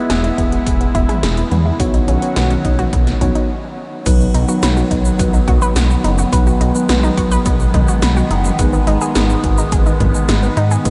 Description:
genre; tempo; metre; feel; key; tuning
synthwave; 106 BPM; 4/4; straight; B major; A4 = 439 Hz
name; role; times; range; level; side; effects
phased analog pad; sustained chords; 0.0-10.9 s; D#3 to F#4; -24 LUFS; equal; phaser, chorus, vintage 12-bit sampler grit, sidechain pumping
analog pluck; arpeggios; 0.0-10.9 s; G#3 to B4; -27 LUFS; equal; chorus, analog delay
mellow tine electric piano; stabs; 0.0-10.9 s; F#3 to E5; -23 LUFS; equal; analog delay
dark detuned saw bass; bass; 0.1-10.9 s; E1 to G#2; -19 LUFS; equal; sidechain pumping
80s electronic pad drums; drums; 0.1-10.9 s; crash cymbal, hi-hat, shaker, snare drum, toms; -25 LUFS; equal; gated reverb on snare and toms, overdrive
electronic kick drum; drums; 0.4-10.9 s; none; -20 LUFS; equal; overdrive
room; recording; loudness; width
moderate huge ambient reverb, RT60 7.8 s; dreamy mix soaked in reverb, nothing above 11.0 kHz; -15 LUFS; mono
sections
0.0-4.1 A section; 4.1-10.9 B section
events
stop 3.5-4.1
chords
0.0 E; 1.8 Badd9; 4.1 B; 8.6 G#m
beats
0.10 0.67 1.23 | 1.80 2.36 2.93 3.50 | 4.06 4.63 5.19 5.76 | 6.33 6.89 7.46 8.02 | 8.59 9.15 9.72 10.29 | 10.85

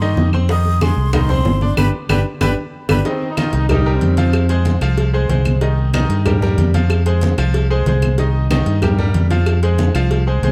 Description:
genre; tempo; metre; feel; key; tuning
latin, salsa; 187 BPM; 4/4; straight; C minor; A4 = 441 Hz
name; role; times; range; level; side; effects
breathy mellow silver concert flute; melody; 0.0-3.0 s; B5 to Eb6; -29 LUFS; equal; none
bright grand piano; accompaniment; 0.0-10.5 s; Eb3 to D6; -24 LUFS; equal; none
fingered electric bass; bass; 0.0-10.5 s; G1 to G2; -18 LUFS; equal; none
bongos and cowbell; percussion; 0.0-10.5 s; none; -28 LUFS; equal; none
congas; percussion; 0.0-10.5 s; none; -24 LUFS; equal; none
claves; percussion; 0.3-10.1 s; none; -30 LUFS; equal; none
bright trombone section; second line; 3.1-4.6 s; C4 to F4; -25 LUFS; equal; none
room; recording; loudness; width
light reverb; none; -16 LUFS; mono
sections
0.0-3.1 A section; 3.1-10.5 B section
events
band accent 1.8-3.1; drum fill 2.6-3.1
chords
0.5 Fm7; 1.8 G; 3.1 Cm7; 4.3 Fm; 5.6 Cm7; 6.9 Fm; 8.2 Cm7; 9.5 Fm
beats
0.17 | 0.49 0.81 1.14 1.46 | 1.77 2.10 2.42 2.73 | 3.06 3.38 3.70 4.02 | 4.34 4.66 4.98 5.30 | 5.62 5.94 6.26 6.58 | 6.90 7.22 7.54 7.86 | 8.19 8.51 8.83 9.15 | 9.47 9.79 10.11 10.43

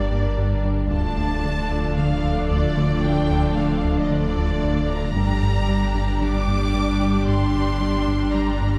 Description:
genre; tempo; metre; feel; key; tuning
cinematic, hybrid orchestral and electronic film score; 113 BPM; 4/4; straight; G minor; A4 = 441 Hz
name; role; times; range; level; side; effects
warm symphonic violin section; melody; 0.0-8.8 s; D5 to D6; -32 LUFS; equal; none
warm symphonic violin section; second line; 0.0-8.8 s; F4 to D5; -34 LUFS; equal; none
rich symphonic viola section; accompaniment; 0.0-8.8 s; G3 to D4; -32 LUFS; equal; none
dark French horn section; sustained chords; 0.0-8.8 s; F3 to D4; -32 LUFS; equal; none
warbly tape-like pad; sustained chords; 0.0-8.8 s; F3 to D5; -33 LUFS; equal; chorus, built-in reverb, phaser
pure sine sub bass; bass; 0.0-8.8 s; D1 to G1; -29 LUFS; equal; none
rich symphonic cello section; bass; 0.0-8.8 s; D2 to G2; -32 LUFS; equal; none
warm symphonic double bass section; bass; 0.0-8.8 s; G1 to D2; -32 LUFS; equal; none
harp-like synth pluck; arpeggios; 0.1-8.8 s; D3 to D4; -34 LUFS; equal; none
rubbery square bass; riff; 0.1-8.8 s; D2 to G3; -28 LUFS; equal; none
room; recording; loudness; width
wet scoring stage reverb, RT60 1.9 s; heard from further back in the room; -21 LUFS; mono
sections
0.0-8.8 A section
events
none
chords
0.0 Gm; 0.9 Dm; 5.2 Gm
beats
0.37 | 0.91 1.44 1.97 2.50 | 3.03 3.56 4.09 4.62 | 5.15 5.68 6.21 6.75 | 7.28 7.81 8.34

